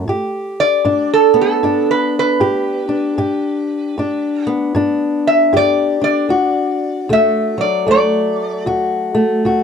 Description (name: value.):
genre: acoustic country blues, solo or duo.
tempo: 77 BPM.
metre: 4/4.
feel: swing 61% on 8ths.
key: unclear.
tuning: A4 = 440 Hz.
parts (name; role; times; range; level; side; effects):
fingerpicked old ladder-braced acoustic guitar; accompaniment; 0.0-9.6 s; D2 to G4; -16 LUFS; left 2 dB; none.
metal-body resonator slide guitar; melody; 0.6-8.7 s; A4 to E5; -15 LUFS; right 1 dB; none.
room: light reverb.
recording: dry, close 1970s-style studio recording.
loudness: -13 LUFS.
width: side -6 dB against mid.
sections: 0.0-9.6 A section.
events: resonator guitar played with a steel bar solo 0.0-9.6.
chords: 0.1 G; 6.3 D.